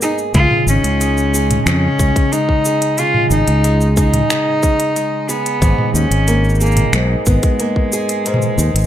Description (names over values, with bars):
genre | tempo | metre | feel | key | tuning
folktronica | 91 BPM | 4/4 | straight | unclear | A4 = 440 Hz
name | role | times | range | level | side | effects
rich cello | melody | 0.0-8.9 s | G#3 to E#4 | -18 LUFS | left 1 dB | ping-pong delay
fingerpicked acoustic archtop guitar | arpeggios | 0.0-8.9 s | G#2 to G#4 | -20 LUFS | right 1 dB | ping-pong delay
organic electronic drum kit | drums | 0.0-8.9 s | finger snaps, hi-hat, shaker, toms | -20 LUFS | right 1 dB | overdrive
fingered electric bass | bass | 0.3-8.9 s | G#1 to E#2 | -15 LUFS | equal | tube saturation
electronic kick drum | drums | 0.3-7.9 s | none | -16 LUFS | equal | overdrive
room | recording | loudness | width
light reverb | none | -12 LUFS | side -11 dB against mid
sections
0.0-8.9 A section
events
none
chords
0.3 C#sus2; 5.6 G#madd9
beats
| 0.34 1.00 1.66 2.32 | 2.98 3.64 4.30 4.96 | 5.62 6.28 6.94 7.60 | 8.26